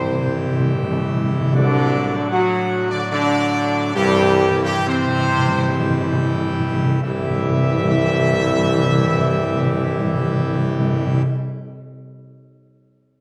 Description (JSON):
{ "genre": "classical", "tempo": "50-78 BPM", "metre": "3/4", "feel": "straight", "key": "C lydian", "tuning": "A4 = 437 Hz", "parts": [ { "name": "warm trumpet section", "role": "melody", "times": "0.0-11.2 s", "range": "G4 to F#5", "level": "-27 LUFS", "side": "equal", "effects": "none" }, { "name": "mellow French horn section", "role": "sustained chords", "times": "0.0-11.2 s", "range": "G3 to F#4", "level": "-27 LUFS", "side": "equal", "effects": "none" }, { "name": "pipe organ, full organ", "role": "sustained chords", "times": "0.0-11.2 s", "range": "G2 to G4", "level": "-27 LUFS", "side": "equal", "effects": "none" }, { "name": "warm trombone section", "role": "sustained chords", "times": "0.0-11.2 s", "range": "G2 to F#3", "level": "-28 LUFS", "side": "equal", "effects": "none" }, { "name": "warm tuba", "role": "bass", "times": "0.0-11.2 s", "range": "C2", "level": "-24 LUFS", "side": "equal", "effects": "none" }, { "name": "timpani", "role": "percussion", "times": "0.0-11.3 s", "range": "C3", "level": "-23 LUFS", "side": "equal", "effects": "none" } ], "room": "moderate scoring stage reverb, RT60 1.6 s", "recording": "none", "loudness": "-19 LUFS", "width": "mono", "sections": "0.0-1.5 A section; 1.5-7.0 B section; 7.0-10.5 C section", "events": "timpani fill 0.0-1.5, 4.0-7.0; slowing down 0.3-7.0", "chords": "0.0 C; 1.5 D/C; 4.0 C", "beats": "0.74 | 1.54 2.32 3.12 | 3.96 4.88 5.88 | 7.03 8.19 9.35" }